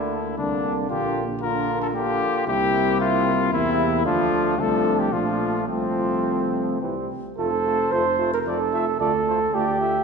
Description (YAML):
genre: classical, brass quintet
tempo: 112 BPM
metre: 3/4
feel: rubato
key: F major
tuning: A4 = 440 Hz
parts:
  - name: mellow trumpet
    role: melody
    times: 0.0-10.0 s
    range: C4 to E5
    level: -26 LUFS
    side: left 7 dB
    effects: none
  - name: mellow flugelhorn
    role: second line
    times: 0.0-10.0 s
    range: C4 to C5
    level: -25 LUFS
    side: right 5 dB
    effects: none
  - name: brilliant trombone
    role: accompaniment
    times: 0.0-9.9 s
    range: C3 to A3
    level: -29 LUFS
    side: right 2 dB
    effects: none
  - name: mellow French horn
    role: accompaniment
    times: 0.0-9.9 s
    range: G3 to F4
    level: -29 LUFS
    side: left 5 dB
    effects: none
  - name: dark tuba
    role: bass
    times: 0.0-10.0 s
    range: F1 to E2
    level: -28 LUFS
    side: right 2 dB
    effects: none
room: wet scoring stage reverb, RT60 2.0 s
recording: minimal, uncompressed stereo recording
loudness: -20 LUFS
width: side -5 dB against mid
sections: 0.0-7.4 A section; 7.4-10.0 B section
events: none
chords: 0.0 Bb/D; 0.9 Gm7/Bb; 2.5 C7; 4.1 Dm; 5.1 Bbmaj7; 5.7 F/C; 6.8 C; 7.4 F; 9.0 Dm